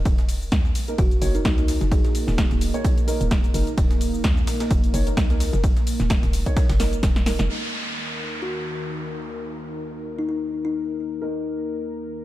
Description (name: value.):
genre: bass house.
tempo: 129 BPM.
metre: 4/4.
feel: swing 56% on 16ths.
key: Eb minor.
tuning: A4 = 440 Hz.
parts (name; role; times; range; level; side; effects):
hollow knocking FM bass; bass; 0.0-7.5 s; Eb1 to Eb2; -25 LUFS; equal; sidechain pumping.
dark analog pad; sustained chords; 1.3-12.2 s; Eb3 to Bb4; -31 LUFS; right 1 dB; chorus, sidechain pumping.
breakbeat sampler-style drum kit; drums; 0.1-7.4 s; ride cymbal, snare drum; -38 LUFS; right 1 dB; sidechain pumping on cymbals, high-pass filter on cymbals, studio reverb, high-pass filter on snare, high-pass filter on room.
electronic kick drum; drums; 0.1-7.1 s; none; -21 LUFS; equal; studio reverb.
house drum kit; drums; 0.1-7.5 s; hi-hat, shaker, snare drum; -29 LUFS; equal; studio reverb.
dark concert grand piano; stabs; 0.9-12.2 s; Bb3 to Db5; -32 LUFS; right 1 dB; sidechain pumping, low-pass filter, ping-pong delay.
kalimba; melody; 1.0-2.1, 8.4-11.3 s; Eb4 to Ab4; -29 LUFS; left 3 dB; ping-pong delay.
downlifter; sound effects; 7.5-11.2 s; none; -32 LUFS; equal; none.
room: digital ambience.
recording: dark, warm production.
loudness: -20 LUFS.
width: side -15 dB against mid.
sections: 0.0-7.5 A section; 7.5-12.2 B section.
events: drum fill 6.8-7.5.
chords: 0.0 Eb5.